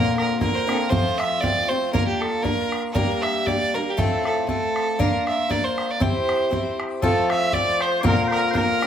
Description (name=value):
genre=celtic folk, Celtic polka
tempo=118 BPM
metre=2/4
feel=swing 54% on 8ths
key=unclear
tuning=A4 = 440 Hz
part: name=clear fiddle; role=melody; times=0.0-8.9 s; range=G4 to E5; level=-24 LUFS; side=right 2 dB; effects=none
part: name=picked swing-style acoustic guitar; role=accompaniment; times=0.0-8.9 s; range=A2 to C5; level=-23 LUFS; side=left 2 dB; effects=none
part: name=bodhran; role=percussion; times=0.2-8.9 s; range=none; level=-26 LUFS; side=right 1 dB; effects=none
part: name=mellow small bagpipes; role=second line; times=7.0-8.9 s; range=A4 to E5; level=-26 LUFS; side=left 3 dB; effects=none
room=wet small room reverb, RT60 0.5 s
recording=heard from further back in the room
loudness=-19 LUFS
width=side -9 dB against mid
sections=0.0-7.0 A section; 7.0-8.9 A section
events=none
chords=0.0 Bbadd9; 0.9 F; 1.9 Bb; 3.0 Gm; 4.0 F/A; 5.0 Bb; 6.0 C; 7.0 F; 8.0 Bbadd9